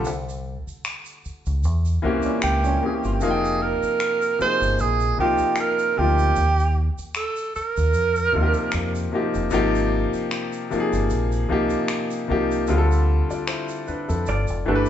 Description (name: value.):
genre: R&B, neo-soul.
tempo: 76 BPM.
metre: 4/4.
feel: swing 54% on 16ths.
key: unclear.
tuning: A4 = 440 Hz.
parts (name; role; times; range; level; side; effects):
warm concert grand piano; accompaniment; 0.0-14.9 s; C3 to G5; -23 LUFS; left 2 dB; none.
deep dub fingered electric bass; bass; 0.0-14.8 s; F1 to F2; -23 LUFS; equal; none.
tube shaker and finger snaps; percussion; 0.1-14.9 s; none; -33 LUFS; left 2 dB; none.
warm trombone section; stabs; 2.2-2.9, 14.9 s; Bb2 to Db4; -29 LUFS; right 2 dB; none.
breathy tenor saxophone; melody; 2.4-9.1 s; F4 to C5; -22 LUFS; right 4 dB; none.
vintage hollow-body jazz guitar; second line; 14.3-14.9 s; D4 to D5; -25 LUFS; right 2 dB; none.
room: light reverb.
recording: band playing live in one room, nothing above 7.9 kHz.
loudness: -20 LUFS.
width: side -10 dB against mid.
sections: 0.0-14.9 A section.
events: band accent 0.1-3.2, 12.7-14.9.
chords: 0.1 C7b9; 3.2 Fm11; 6.4 Eb69; 9.5 Abmaj9; 12.7 Dm7; 14.3 G9.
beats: | 0.05 0.84 1.63 2.42 | 3.21 4.00 4.79 5.58 | 6.37 7.16 7.95 8.74 | 9.53 10.32 11.11 11.90 | 12.69 13.47 14.26.